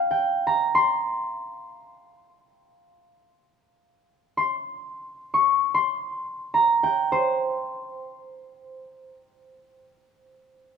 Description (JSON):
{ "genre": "japanese traditional, Japanese chamber music", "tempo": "free time", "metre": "none", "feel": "none", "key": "C in sen", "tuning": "A4 = 440 Hz", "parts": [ { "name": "concert harp", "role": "solo", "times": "0.0-9.8 s", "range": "C5 to Db6", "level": "-22 LUFS", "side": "equal", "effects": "none" } ], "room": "light reverb", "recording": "minimal, uncompressed stereo recording", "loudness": "-21 LUFS", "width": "side -6 dB against mid", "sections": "0.0-10.8 A section", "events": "none", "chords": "none" }